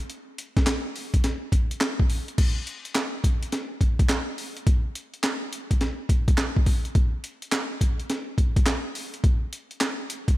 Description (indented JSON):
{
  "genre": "R&B",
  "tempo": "105 BPM",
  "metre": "4/4",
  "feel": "swing 65% on 16ths",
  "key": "none",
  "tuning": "none",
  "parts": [
    { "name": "breakbeat sampler-style drum kit", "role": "drums", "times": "0.1-10.4 s", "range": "crash cymbal, handclaps, hi-hat, kick drum, snare drum", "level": "-22 LUFS", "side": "equal", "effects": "none" },
    { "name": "group handclap", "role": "percussion", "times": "3.0-10.0 s", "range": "none", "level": "-36 LUFS", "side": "right 5 dB", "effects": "none" }
  ],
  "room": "digital ambience",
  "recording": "none",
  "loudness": "-23 LUFS",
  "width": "side -17 dB against mid",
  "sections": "0.0-2.4 A section; 2.4-10.4 B section",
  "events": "none",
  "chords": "none"
}